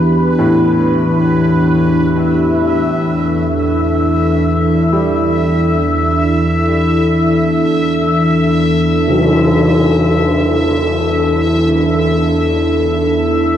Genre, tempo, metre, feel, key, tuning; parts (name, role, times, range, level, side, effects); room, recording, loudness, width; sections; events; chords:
dark ambient drone; free time; E minor; A4 = 440 Hz
dark analog pad; sustained chords; 0.0-13.6 s; D4 to A4; -15 LUFS; equal; chorus
analog drone; drone; 0.0-13.6 s; E2 to E3; -15 LUFS; equal; chorus
bubbling stepped-filter texture; texture; 0.0-13.6 s; B4 to E5; -20 LUFS; left 1 dB; chorus, built-in reverb
clear baby grand piano; arpeggios; 0.4-13.6 s; A2 to G3; -25 LUFS; right 1 dB; ping-pong delay
tam-tam; percussion; 9.1-9.3 s; -18 LUFS; left 2 dB; low-pass filter on cymbals
wet huge ambient reverb, RT60 8.4 s; worn, warbling old tape, cassette tape, warbly pitch drift; -11 LUFS; side -10 dB against mid
0.0-13.6 A section
0.0 Em